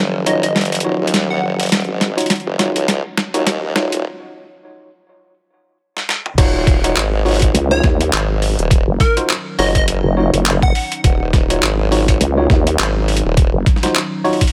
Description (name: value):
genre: glitch hop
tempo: 103 BPM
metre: 4/4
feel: swing 57% on 16ths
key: Eb minor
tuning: A4 = 440 Hz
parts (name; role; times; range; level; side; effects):
- warbly tape-like pad; sustained chords; 0.0-14.5 s; Eb3 to Eb4; -30 LUFS; equal; chorus, built-in reverb, sidechain pumping
- formant-sweep wobble bass; bass; 0.0-13.5 s; Eb1 to Eb2; -21 LUFS; equal; chorus, high-pass filter
- plucky unison lead; melody; 0.3-1.9, 7.7-11.2 s; Bb4 to Gb5; -25 LUFS; equal; phaser, tape echo
- tine electric piano; stabs; 0.3-14.4 s; Eb4 to Db5; -23 LUFS; equal; overdrive, vintage 12-bit sampler grit, sidechain pumping, tape echo
- boom bap sampler-style drum kit; drums; 0.3-14.5 s; crash cymbal, handclaps, hi-hat, snare drum, toms; -22 LUFS; equal; overdrive
- electronic kick drum; drums; 6.4-14.5 s; none; -16 LUFS; equal; overdrive
- vowel-sweep wobble bass; bass; 7.5-13.6 s; Gb1 to Eb2; -17 LUFS; equal; chorus
room: digital ambience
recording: high-pass filter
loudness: -16 LUFS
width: mono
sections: 0.0-6.4 A section; 6.4-14.5 B section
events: build-up 0.0-6.4; drum fill 0.0-4.1, 5.9-6.4; filter sweep 0.0-6.4; break 4.1-6.4; drop 6.4-14.5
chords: 0.0 Ebm9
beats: 0.56 1.14 | 1.72 2.30 2.89 3.47 | 4.05 4.63 5.22 5.80 | 6.38 6.96 7.55 8.13 | 8.71 9.29 9.88 10.46 | 11.04 11.62 12.21 12.79 | 13.37 13.95